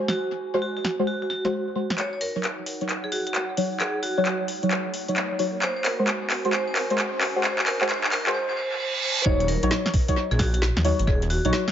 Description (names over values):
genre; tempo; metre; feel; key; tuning
UK garage, two-step garage; 132 BPM; 4/4; swing 65% on 16ths; Eb dorian; A4 = 444 Hz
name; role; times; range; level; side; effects
deep mellow chord stab; stabs; 0.0-11.5 s; Gb3 to Db5; -26 LUFS; left 1 dB; chorus, analog delay
warbly tape-like pad; texture; 0.0-8.3 s; Eb4 to Ab5; -35 LUFS; right 2 dB; chorus, built-in reverb, sidechain pumping
vibraphone with hard mallets; melody; 0.1-11.5 s; Gb4 to Db5; -30 LUFS; equal; tape echo
garage drum kit; drums; 0.1-11.7 s; handclaps, hi-hat, snare drum; -27 LUFS; equal; high-pass filter on snare, high-pass filter on hats, tape echo
riser and reverse cymbal; sound effects; 3.2-9.3 s; none; -32 LUFS; right 4 dB; none
dark detuned saw bass; bass; 9.3-11.5 s; Eb1 to Eb2; -24 LUFS; equal; none
electronic kick drum; drums; 9.3-11.2 s; none; -23 LUFS; equal; none
room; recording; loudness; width
moderate spring reverb, RT60 1.8 s, digital ambience; echo-heavy mix, high-pass filter, nothing above 7.6 kHz; -22 LUFS; side -10 dB against mid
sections
0.0-2.0 A section; 2.0-9.3 B section; 9.3-11.7 C section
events
build-up 2.0-9.3; drum fill 2.0-8.3; filter sweep on synth stab 2.0-9.3; riser 3.2-8.3; break 8.3-9.3; reverse cymbal 8.3-9.3; drop 9.3-11.7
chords
0.0 Ab7; 2.0 Ebm7; 5.6 Ab7; 9.3 Ebm7